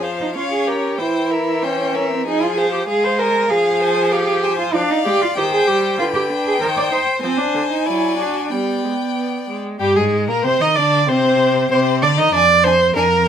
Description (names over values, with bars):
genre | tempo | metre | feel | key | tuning
quick classical-period movement for string quartet | 96 BPM | 2/4 | rubato | F minor, C minor from 4.7 s | A4 = 440 Hz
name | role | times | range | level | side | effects
clear violin | melody | 0.0-13.1 s | G4 to Ab5 | -24 LUFS | left 8 dB | none
clear violin | second line | 0.0-13.0 s | G3 to D5 | -23 LUFS | left 4 dB | none
rich viola | accompaniment | 0.0-13.3 s | D3 to Eb5 | -19 LUFS | right 2 dB | none
rich cello | bass | 0.2-13.3 s | F2 to D5 | -19 LUFS | right 3 dB | none
room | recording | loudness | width
moderate studio reverb, RT60 0.6 s | none | -15 LUFS | side -8 dB against mid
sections
0.0-9.8 A section; 9.8-13.3 B section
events
none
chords
0.4 Bbm/Db; 1.0 C7/E; 2.3 Fm; 2.9 Fm/Ab; 3.5 Fm; 4.7 Ddim; 5.4 Cm/Eb; 6.0 G/D; 6.6 Cm/Eb; 7.2 D7(b5, no3); 7.9 D/F#; 8.5 G; 9.8 Absus2; 10.4 Cmadd9; 12.3 Ddim/F